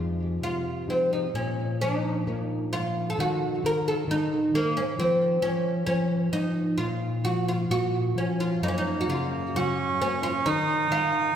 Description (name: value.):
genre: fado-style ballad.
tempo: 66 BPM.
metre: 2/4.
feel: rubato.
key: Bb minor.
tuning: A4 = 435 Hz.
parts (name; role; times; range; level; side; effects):
oud; melody; 0.0-11.3 s; Bb3 to Bb4; -27 LUFS; right 1 dB; tape echo.
nylon-string guitar; accompaniment; 0.0-11.3 s; F2 to Eb4; -28 LUFS; left 1 dB; none.
accordion; second line; 8.6-11.4 s; Bb3 to Eb4; -26 LUFS; right 4 dB; none.
room: wet concert hall reverb, RT60 1.9 s.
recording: heard from further back in the room.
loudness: -24 LUFS.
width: side -9 dB against mid.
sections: 0.0-1.3 A section; 1.3-11.4 B section.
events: none.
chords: 0.0 Fm7; 1.3 Bb5; 3.2 N.C.; 6.8 Bb5; 8.6 Gb; 10.5 N.C..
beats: 0.40 | 1.34 2.27 | 3.17 4.07 | 4.96 5.85 | 6.77 7.69 | 8.62 9.55 | 10.46 11.35.